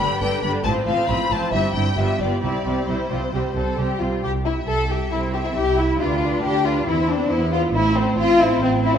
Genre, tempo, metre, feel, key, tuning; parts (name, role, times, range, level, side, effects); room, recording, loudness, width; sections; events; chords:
quick classical-period movement for string orchestra; 136 BPM; 4/4; straight; C major; A4 = 435 Hz
rich studio violin section; melody; 0.0-9.0 s; B4 to B5; -27 LUFS; left 5 dB
clear studio violin section; second line; 0.0-9.0 s; C4 to C5; -22 LUFS; left 2 dB
clear studio viola section; accompaniment; 0.0-9.0 s; D3 to A4; -27 LUFS; right 1 dB
rich studio cello section; bass; 0.0-9.0 s; G2 to E4; -26 LUFS; right 2 dB
rich studio double bass section; bass; 0.0-9.0 s; G1 to E2; -25 LUFS; right 2 dB
wet concert hall reverb, RT60 2.3 s; dark, warm production; -18 LUFS; side -8 dB against mid
0.0-4.2 A section; 4.2-9.0 A section
0.0 G; 0.7 F/A; 1.5 C/G; 2.0 G7; 2.4 C; 6.0 G7/D; 6.9 C/E; 7.8 Am